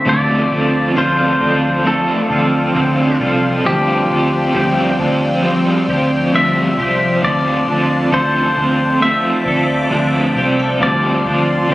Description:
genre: dream pop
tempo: 67 BPM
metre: 4/4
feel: straight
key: D minor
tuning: A4 = 439 Hz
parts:
  - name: pedal steel guitar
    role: melody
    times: 0.0-11.7 s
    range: G4 to E5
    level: -19 LUFS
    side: left 1 dB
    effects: ping-pong delay
  - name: phased analog pad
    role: sustained chords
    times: 0.0-11.7 s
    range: F3 to D6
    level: -21 LUFS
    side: left 1 dB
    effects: phaser, chorus
  - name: twangy electric guitar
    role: arpeggios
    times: 0.0-11.7 s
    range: F3 to A4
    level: -24 LUFS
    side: left 1 dB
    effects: ensemble chorus, ping-pong delay
  - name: crunchy overdriven guitar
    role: accompaniment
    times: 0.1-11.7 s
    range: D3 to C5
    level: -16 LUFS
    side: right 1 dB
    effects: tremolo, analog chorus
  - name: vintage muted picked electric bass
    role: bass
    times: 0.1-11.7 s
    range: C2 to D2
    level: -21 LUFS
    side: equal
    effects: none
room: moderate huge ambient reverb, RT60 8.2 s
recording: recorded on a phone in the room, club reverb, compression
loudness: -13 LUFS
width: side -16 dB against mid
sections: 0.1-11.7 A section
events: none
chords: 0.1 Dm7; 10.8 G7sus4/D

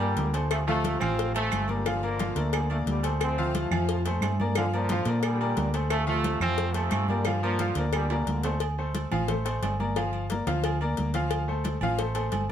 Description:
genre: latin, salsa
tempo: 178 BPM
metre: 4/4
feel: straight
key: D minor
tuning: A4 = 440 Hz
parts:
  - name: bright trombone section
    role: melody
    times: 0.0-8.6 s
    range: F2 to C4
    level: -31 LUFS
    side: right 1 dB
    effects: none
  - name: bright grand piano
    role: accompaniment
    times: 0.0-12.5 s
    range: F3 to F5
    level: -31 LUFS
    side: left 2 dB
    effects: none
  - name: hollow-body short-scale fingered electric bass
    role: bass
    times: 0.0-12.5 s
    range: G1 to Bb2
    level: -29 LUFS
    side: right 1 dB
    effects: none
  - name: agogo bells and timbales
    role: percussion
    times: 0.0-12.5 s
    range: none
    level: -35 LUFS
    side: right 4 dB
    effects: none
  - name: congas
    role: percussion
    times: 0.0-12.5 s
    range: none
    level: -36 LUFS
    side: equal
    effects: none
  - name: cowbell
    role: percussion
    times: 0.2-12.5 s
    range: none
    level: -35 LUFS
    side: left 10 dB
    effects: none
  - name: claves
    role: percussion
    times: 0.5-8.1 s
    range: none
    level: -38 LUFS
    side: right 11 dB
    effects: none
room: light reverb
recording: none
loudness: -25 LUFS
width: side -9 dB against mid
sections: 0.0-8.6 A section; 8.6-12.5 B section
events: drum fill 8.1-8.6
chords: 0.0 Gm7; 3.2 Dm7; 10.0 Gm7; 11.3 Dm7

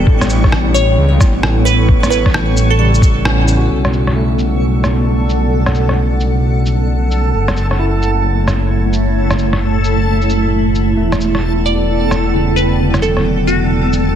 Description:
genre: future garage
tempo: 132 BPM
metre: 4/4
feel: swing 63% on 16ths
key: B minor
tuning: A4 = 441 Hz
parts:
  - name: glassy wavetable pluck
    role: melody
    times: 0.0-2.9, 11.7-13.7 s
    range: F#4 to D5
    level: -19 LUFS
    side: right 1 dB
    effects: chorus, digital delay
  - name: barky tine electric piano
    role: accompaniment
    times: 0.0-14.2 s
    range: C#3 to F#4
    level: -21 LUFS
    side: right 2 dB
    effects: sidechain pumping, dub echo
  - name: granular cloud pad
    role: sustained chords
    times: 0.0-14.2 s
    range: A3 to G5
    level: -19 LUFS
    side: right 1 dB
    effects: built-in reverb, sidechain pumping
  - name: swelling detuned saw bass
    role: bass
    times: 0.0-14.2 s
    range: E1 to C#2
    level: -15 LUFS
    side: equal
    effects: sidechain pumping
  - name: backwards swelling texture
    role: texture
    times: 0.1-14.2 s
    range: A4 to C#6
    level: -24 LUFS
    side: equal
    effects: built-in reverb
  - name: electronic kick drum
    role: drums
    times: 0.1-3.1 s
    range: none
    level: -11 LUFS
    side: equal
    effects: small room ambience
  - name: electronic rim click and shaker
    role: drums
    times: 0.2-14.0 s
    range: none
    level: -20 LUFS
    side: equal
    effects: soft clipping on snare, low-pass filter on snare, small room ambience, low-pass filter on perc
room: light reverb, digital ambience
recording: dense, heavily limited modern master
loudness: -11 LUFS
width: side -9 dB against mid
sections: 0.0-3.7 A section; 3.7-14.2 B section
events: filter sweep on tine electric piano 0.0-3.7; kick drops out 3.2-3.7; band accent 3.2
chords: 0.1 A9; 3.7 Bm7; 7.3 F#m7; 11.0 Em7

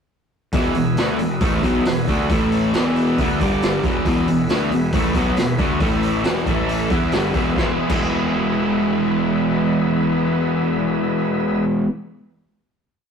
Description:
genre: blues rock power trio and southern rock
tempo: 136 BPM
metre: 4/4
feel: straight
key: E mixolydian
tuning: A4 = 441 Hz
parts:
  - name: overdriven tonewheel organ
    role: sustained chords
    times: 0.5-11.7 s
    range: B3 to F5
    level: -27 LUFS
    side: equal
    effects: slow rotary speaker
  - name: distorted electric guitar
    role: riff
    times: 0.5-11.9 s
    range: E2 to E4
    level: -19 LUFS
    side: equal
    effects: distortion
  - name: fuzz picked electric bass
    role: bass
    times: 0.5-11.8 s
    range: E1 to E2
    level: -25 LUFS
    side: equal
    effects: overdrive
  - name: raw garage drum kit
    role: drums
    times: 0.5-8.0 s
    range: crash cymbal, hi-hat, kick drum, snare drum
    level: -23 LUFS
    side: equal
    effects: none
room: moderate stone room reverb, RT60 1.0 s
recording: rough rehearsal-room recording, tube saturation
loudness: -17 LUFS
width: side -6 dB against mid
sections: 0.5-7.6 riff; 7.6-11.1 final chord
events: none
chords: 0.5 E; 2.3 A5; 2.7 E; 3.4 G5; 3.8 E; 5.8 A5; 6.3 E5; 6.5 A5; 6.9 E

